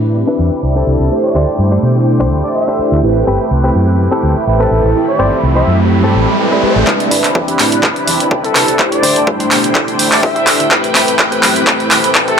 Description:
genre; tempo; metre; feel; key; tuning
filtered disco house; 125 BPM; 4/4; swing 53% on 16ths; A minor; A4 = 440 Hz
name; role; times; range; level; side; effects
mellow synth brass; accompaniment; 0.0-12.4 s; A3 to B5; -15 LUFS; right 1 dB; chorus, phaser, sidechain pumping, low-pass filter
warm symphonic violin section; sustained chords; 0.0-12.4 s; C4 to D6; -23 LUFS; left 1 dB; vintage 12-bit sampler grit, sidechain pumping, low-pass filter
direct-recorded clean electric guitar; riff; 0.0-12.3 s; C4 to C5; -20 LUFS; left 2 dB; vintage 12-bit sampler grit, sidechain pumping, low-pass filter
hollow-body short-scale fingered electric bass; bass; 0.0-12.3 s; G1 to B2; -15 LUFS; equal; sidechain pumping, high-pass filter, low-pass filter
warm horn section; melody; 0.8-12.4 s; A4 to E5; -19 LUFS; left 1 dB; sidechain pumping, low-pass filter, ping-pong delay
riser; sound effects; 4.3-6.9 s; none; -19 LUFS; right 1 dB; none
electronic kick drum; drums; 6.9-12.3 s; none; -16 LUFS; equal; high-pass filter on kick, high-pass filter on room
punchy analog drum machine; drums; 6.9-12.4 s; handclaps, hi-hat; -13 LUFS; equal; sidechain pumping on hats, high-pass filter on hats, high-pass filter on snare, high-pass filter on room
room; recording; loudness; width
moderate plate reverb, RT60 2.2 s; none; -10 LUFS; side -7 dB against mid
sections
0.0-6.9 A section; 6.9-12.4 B section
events
filter sweep 0.0-6.9, 6.9-12.4; riser 4.3-6.9; build-up 6.9-12.4; drum fill 6.9-12.4; filter sweep on horn section 6.9-12.4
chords
0.0 Cmaj9; 3.0 Am9; 6.9 Cmaj9; 8.8 D7sus4; 10.7 Am9

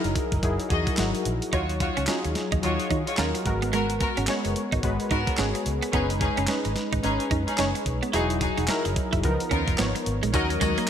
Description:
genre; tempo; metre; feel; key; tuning
R&B, new jack swing; 109 BPM; 4/4; swing 60% on 16ths; Eb minor; A4 = 440 Hz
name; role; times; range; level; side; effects
warm analog keys; accompaniment; 0.0-10.9 s; F3 to Eb5; -28 LUFS; left 1 dB; chorus
vintage muted fingered electric bass; bass; 0.0-10.7 s; E1 to Eb3; -29 LUFS; equal; none
crisp 8-bit digital drum machine; drums; 0.0-10.9 s; handclaps, hi-hat, kick drum, snare drum, tambourine; -29 LUFS; equal; none
warm studio string section; stabs; 0.7-10.8 s; Cb4 to D#5; -31 LUFS; left 1 dB; ping-pong delay
clean electric guitar; riff; 1.5-10.8 s; Ab3 to E4; -32 LUFS; right 6 dB; analog chorus
room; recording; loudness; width
moderate lush hall reverb, RT60 2.1 s; bright 1980s-style digital production; -23 LUFS; side -9 dB against mid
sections
0.0-10.3 A section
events
none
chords
0.0 Emaj9; 1.5 Ebm9; 3.5 Abm9; 5.9 B69/F#; 8.1 Emaj9; 9.2 Db13; 10.3 Ebm7

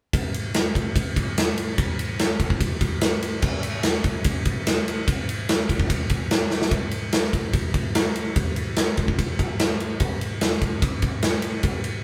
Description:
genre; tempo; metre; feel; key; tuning
rock; 146 BPM; 4/4; straight; none; none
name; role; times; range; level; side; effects
big rock drum kit; drums; 0.1-11.9 s; crash cymbal, kick drum, ride cymbal, snare drum; -24 LUFS; equal; none
room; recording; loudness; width
light reverb; band playing live in one room; -24 LUFS; mono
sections
0.1-6.7 A section; 6.7-12.0 B section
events
drum fill 6.5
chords
none

